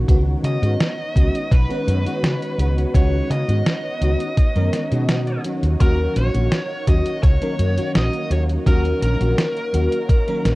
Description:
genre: vaporwave.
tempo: 84 BPM.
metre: 4/4.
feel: straight.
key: Eb minor.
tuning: A4 = 439 Hz.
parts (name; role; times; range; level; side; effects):
FM electric piano with soft pad layer; accompaniment; 0.0-10.6 s; Eb3 to Cb5; -25 LUFS; equal; ensemble chorus, tape echo.
soft string machine; sustained chords; 0.0-10.6 s; Bb3 to Gb5; -33 LUFS; equal; ensemble chorus.
woody fretless electric bass; bass; 0.0-10.6 s; Bb1 to Db3; -19 LUFS; equal; tube saturation.
detuned 8-bit digital drum machine; drums; 0.1-10.6 s; hi-hat, snare drum; -23 LUFS; equal; studio reverb.
electronic kick drum; drums; 0.1-10.2 s; none; -16 LUFS; equal; studio reverb.
nasal lead guitar with a parked wah; melody; 0.5-10.6 s; Bb4 to Eb5; -26 LUFS; equal; overdrive, tape echo.
room: digital ambience.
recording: worn, warbling old tape, cassette tape, warbly pitch drift.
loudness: -17 LUFS.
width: side -20 dB against mid.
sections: 0.0-10.6 A section.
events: none.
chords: 0.1 Db9sus4; 5.4 Ebm7.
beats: | 0.09 0.81 1.52 2.23 | 2.95 3.66 4.38 5.09 | 5.80 6.52 7.23 7.95 | 8.66 9.38 10.09.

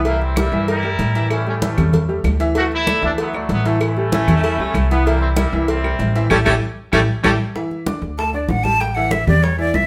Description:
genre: latin, salsa.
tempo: 192 BPM.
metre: 4/4.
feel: straight.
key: unclear.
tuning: A4 = 440 Hz.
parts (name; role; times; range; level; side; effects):
clear upright piano; accompaniment; 0.0-9.8 s; E3 to D6; -25 LUFS; equal; none.
upright bass; bass; 0.0-9.9 s; A1 to A2; -23 LUFS; equal; none.
clear trumpet section; melody; 0.1-7.3 s; F#3 to Bb4; -24 LUFS; equal; none.
congas; percussion; 0.1-9.9 s; none; -24 LUFS; equal; none.
cowbell and bongos; percussion; 0.1-9.9 s; none; -30 LUFS; equal; none.
claves; percussion; 0.4-7.3 s; none; -32 LUFS; equal; none.
breathy baritone saxophone; second line; 4.1-7.3 s; C#4 to E4; -26 LUFS; equal; none.
breathy bright jazz flute; melody; 8.2-9.9 s; C#5 to A5; -21 LUFS; equal; none.
room: moderate studio reverb, RT60 0.7 s.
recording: band playing live in one room.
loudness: -18 LUFS.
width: mono.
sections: 0.0-7.6 A section; 7.6-9.9 B section.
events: band accent 6.3-7.6; drum fill 6.6-7.6; flute solo 7.6-9.9.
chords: 0.1 C7; 1.3 A7; 2.6 Dadd9; 3.8 A7; 5.1 C7; 6.3 A7(no3); 7.6 Dsus2; 8.8 A5.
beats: | 0.06 0.37 0.68 1.00 | 1.31 1.62 1.93 2.25 | 2.56 2.87 3.18 3.50 | 3.81 4.12 4.43 4.74 | 5.06 5.37 5.68 5.99 | 6.31 6.62 6.93 7.24 | 7.56 7.87 8.18 8.49 | 8.81 9.12 9.43 9.74.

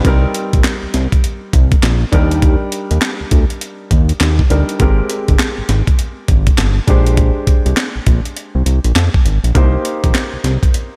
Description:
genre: R&B, new jack swing.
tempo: 101 BPM.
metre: 4/4.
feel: swing 63% on 16ths.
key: C minor.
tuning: A4 = 440 Hz.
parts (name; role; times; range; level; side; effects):
warm grand piano; accompaniment; 0.0-11.0 s; G3 to C5; -24 LUFS; equal; slapback echo.
fat analog bass; bass; 0.0-10.6 s; G1 to F2; -16 LUFS; equal; none.
breakbeat sampler-style drum kit; drums; 0.0-10.9 s; handclaps, hi-hat, kick drum, snare drum; -16 LUFS; equal; none.
room: light reverb.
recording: none.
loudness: -14 LUFS.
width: mono.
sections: 0.0-11.0 A section.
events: none.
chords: 0.0 Cm7; 2.1 Ebmaj7; 4.8 Abmaj9; 6.9 Bb13; 9.6 Cm7.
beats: | 0.05 0.64 1.23 1.83 | 2.42 3.02 3.61 4.21 | 4.80 5.39 5.99 6.58 | 7.17 7.77 8.36 8.96 | 9.55 10.14 10.74.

